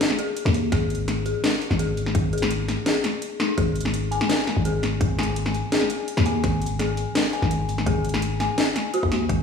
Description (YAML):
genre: half-time drum and bass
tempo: 168 BPM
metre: 4/4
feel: half-time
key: unclear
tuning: A4 = 440 Hz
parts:
  - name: dark detuned synth bell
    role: arpeggios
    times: 0.0-9.4 s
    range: D#4 to G#5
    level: -28 LUFS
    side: left 4 dB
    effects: chorus, dub echo
  - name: drum and bass drum kit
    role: drums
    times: 0.0-9.4 s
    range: hi-hat, snare drum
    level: -25 LUFS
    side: left 1 dB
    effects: overdrive, small room ambience
  - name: growling 808-style bass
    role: bass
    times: 0.5-9.4 s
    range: G#1 to D#2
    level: -24 LUFS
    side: left 1 dB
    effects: none
  - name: electronic kick drum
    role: drums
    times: 0.7-9.4 s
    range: none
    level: -23 LUFS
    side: left 1 dB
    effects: overdrive, small room ambience
room: moderate digital room reverb, RT60 1.1 s, digital ambience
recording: played on a big sound system in a bare room, stone room reverb, studio reverb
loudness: -21 LUFS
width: side -6 dB against mid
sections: 0.0-9.4 A section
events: none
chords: 0.0 G#5